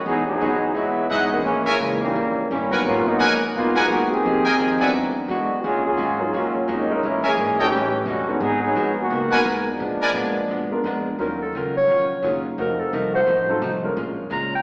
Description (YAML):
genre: jazz, big band swing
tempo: 173 BPM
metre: 4/4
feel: swing 62% on 8ths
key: Eb minor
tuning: A4 = 440 Hz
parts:
  - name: bright trombone section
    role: second line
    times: 0.0-10.8 s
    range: Db3 to G#4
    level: -21 LUFS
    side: equal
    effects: none
  - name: upright bass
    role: bass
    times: 0.0-14.6 s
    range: E1 to Bb2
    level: -34 LUFS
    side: equal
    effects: none
  - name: archtop guitar, miked and amplified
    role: accompaniment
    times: 0.1-14.5 s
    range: A2 to Bb4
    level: -28 LUFS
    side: equal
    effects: none
  - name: warm baby grand piano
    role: accompaniment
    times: 0.4-14.0 s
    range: E3 to C#5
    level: -27 LUFS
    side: equal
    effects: none
  - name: brilliant trumpet section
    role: stabs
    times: 1.1-4.9, 7.2-10.1 s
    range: G#4 to Ab5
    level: -22 LUFS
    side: equal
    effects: none
  - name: breathy clarinet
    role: melody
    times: 11.2-14.6 s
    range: A4 to Bb5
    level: -21 LUFS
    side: equal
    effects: none
  - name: warm trombone section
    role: sustained chords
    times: 12.6-13.2 s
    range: F3 to Gb4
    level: -30 LUFS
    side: equal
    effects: none
room: wet recital hall reverb, RT60 1.5 s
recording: recorded in a church or concert hall, AM radio sound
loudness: -18 LUFS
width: side -37 dB against mid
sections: 0.1-11.2 A section; 11.2-14.6 B section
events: trombone section solo 0.1-11.2; clarinet solo 11.2-14.6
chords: 0.1 Emaj9; 1.5 Bbm7b5; 2.2 Eb7b9; 2.9 Abm9; 4.2 Fm11; 4.9 E9; 5.6 Ebm11; 7.0 Bbm7b5; 7.7 A7#11; 8.4 Abm9; 9.8 Bb7b9; 11.2 Ebm9; 12.6 F7b9; 14.0 Bbm7